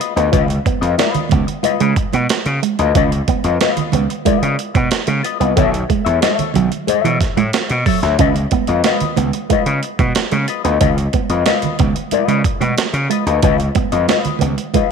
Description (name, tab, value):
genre	funk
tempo	92 BPM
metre	4/4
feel	straight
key	Db mixolydian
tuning	A4 = 440 Hz
part	semi-hollow electric guitar	accompaniment	0.0-14.9 s	F4 to Fb5	-19 LUFS	left 13 dB	wah
part	electric guitar with an envelope filter	riff	0.0-14.9 s	Fb3 to Db4	-22 LUFS	right 11 dB	phaser
part	breakbeat sampler-style drum kit	drums	0.0-14.9 s	hi-hat, kick drum, snare drum	-19 LUFS	right 2 dB	none
part	gritty slap bass	bass	0.2-14.8 s	Cb2 to Db3	-18 LUFS	equal	overdrive
part	congas	percussion	0.3-14.9 s	none	-24 LUFS	right 11 dB	none
room	moderate echo chamber reverb, RT60 1.8 s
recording	1960s-style stereo with parts hard left and right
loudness	-14 LUFS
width	side -6 dB against mid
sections	0.0-14.9 A section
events	none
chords	0.0 Db9; 5.6 Cb9sus4; 8.2 Db9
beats	| 0.32 0.98 1.64 2.29 | 2.95 3.60 4.26 4.92 | 5.57 6.23 6.88 7.54 | 8.19 8.85 9.50 10.16 | 10.81 11.47 12.12 12.78 | 13.44 14.09 14.75